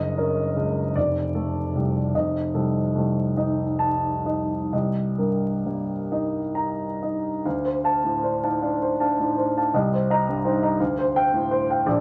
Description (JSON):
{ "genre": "classical, impressionist solo piano", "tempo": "42-57 BPM (dotted quarters)", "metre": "6/8", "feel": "rubato", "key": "unclear", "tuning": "A4 = 440 Hz", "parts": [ { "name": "warm grand piano", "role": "solo", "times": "0.0-12.0 s", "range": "F1 to Bb5", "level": "-24 LUFS", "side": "equal", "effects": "none" } ], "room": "moderate studio reverb, RT60 0.8 s", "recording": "vinyl crackle", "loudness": "-24 LUFS", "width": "mono", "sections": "0.0-7.5 A section; 7.5-12.0 B section", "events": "none", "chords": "0.0 F#6; 1.0 F6; 2.1 F7; 4.7 Cm7; 7.5 Dm7; 9.7 Cm7; 10.8 Dm7", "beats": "0.96 | 2.13 3.36 | 4.72 6.10 | 7.45 8.62 | 9.73 10.79 | 11.86" }